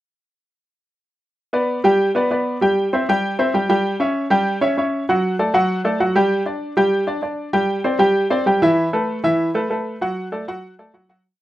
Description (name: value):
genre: latin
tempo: 195 BPM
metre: 4/4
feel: straight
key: G major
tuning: A4 = 441 Hz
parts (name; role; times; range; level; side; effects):
- clear baby grand piano; solo; 1.5-11.2 s; E3 to G5; -17 LUFS; equal; none
room: moderate small room reverb, RT60 0.6 s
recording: rough home demo mix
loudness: -17 LUFS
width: side -14 dB against mid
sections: 1.4-11.2 verse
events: fade-out 9.3-11.2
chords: 1.4 G; 2.6 C; 3.8 C#dim/G; 5.1 D; 6.3 G5; 7.5 Cadd9; 8.8 Asus2; 10.0 D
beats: | 1.38 1.69 2.00 2.30 | 2.61 2.92 3.23 3.54 | 3.85 4.16 4.46 4.77 | 5.08 5.39 5.70 6.00 | 6.31 6.62 6.93 7.23 | 7.54 7.85 8.16 8.46 | 8.77 9.08 9.39 9.70 | 10.01 10.31 10.62 10.93